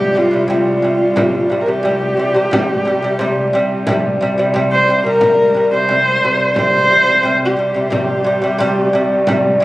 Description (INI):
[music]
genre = mongolian traditional, Mongolian folk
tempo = 89 BPM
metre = 4/4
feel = straight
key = unclear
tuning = A4 = 440 Hz
[part]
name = warm horsehead fiddle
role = melody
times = 0.0-9.6 s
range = F4 to C5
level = -15 LUFS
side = equal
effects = none
[part]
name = lute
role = arpeggios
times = 0.0-9.6 s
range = C3 to G3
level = -16 LUFS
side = equal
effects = none
[part]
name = bright cello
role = drone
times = 0.0-9.6 s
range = C2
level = -23 LUFS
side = equal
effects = none
[part]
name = frame drum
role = percussion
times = 0.2-9.4 s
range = none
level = -24 LUFS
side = equal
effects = none
[sound]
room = light reverb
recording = recorded on a phone in the room, club reverb, compression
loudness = -12 LUFS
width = side -18 dB against mid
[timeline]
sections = 0.0-9.6 A section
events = none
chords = 0.0 C5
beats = 0.49 1.17 1.84 | 2.52 3.19 3.87 4.54 | 5.22 5.89 6.57 7.25 | 7.92 8.60 9.27